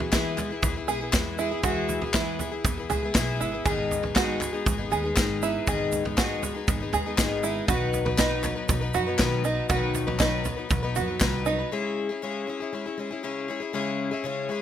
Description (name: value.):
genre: indie folk with a building arrangement.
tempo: 119 BPM.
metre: 4/4.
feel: straight.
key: C# minor.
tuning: A4 = 437 Hz.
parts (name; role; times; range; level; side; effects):
picked plugged-in twelve-string acoustic guitar; accompaniment; 0.0-14.6 s; G#2 to B4; -29 LUFS; left 5 dB; none.
open-back banjo; arpeggios; 0.0-11.7 s; D#4 to G#4; -30 LUFS; right 6 dB; none.
upright bass; bass; 0.0-11.6 s; G#1 to F#2; -33 LUFS; equal; none.
natural country drum kit; drums; 0.0-11.3 s; kick drum, snare drum, toms; -27 LUFS; equal; none.
egg shaker; percussion; 0.1-11.6 s; none; -37 LUFS; right 7 dB; none.
group handclap; percussion; 0.1-11.3 s; none; -32 LUFS; left 4 dB; none.
room: light reverb.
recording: none.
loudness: -24 LUFS.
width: side -10 dB against mid.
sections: 0.0-11.7 A section; 11.7-14.6 A section.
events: none.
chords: 0.0 E; 3.7 G#m; 7.7 B; 11.7 C#m.